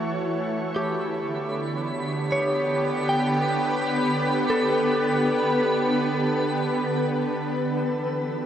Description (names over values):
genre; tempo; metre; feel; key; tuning
ambient; free time; none; none; unclear; A4 = 443 Hz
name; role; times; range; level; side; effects
shimmering ambient pad; sustained chords; 0.0-8.5 s; D3 to C#5; -24 LUFS; equal; chorus, built-in reverb
twinkling granular texture; texture; 0.9-8.5 s; B5 to E6; -32 LUFS; equal; built-in reverb
direct-recorded clean electric guitar; arpeggios; 0.8-8.5 s; G4 to G5; -28 LUFS; equal; spring reverb, tape echo
room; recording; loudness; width
wet shimmer reverb, RT60 8.2 s; worn, warbling old tape, cassette tape, warbly pitch drift; -22 LUFS; side -9 dB against mid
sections
0.0-7.1 A section; 7.1-8.5 B section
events
none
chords
0.0 F#m7; 0.6 G; 7.1 F#m7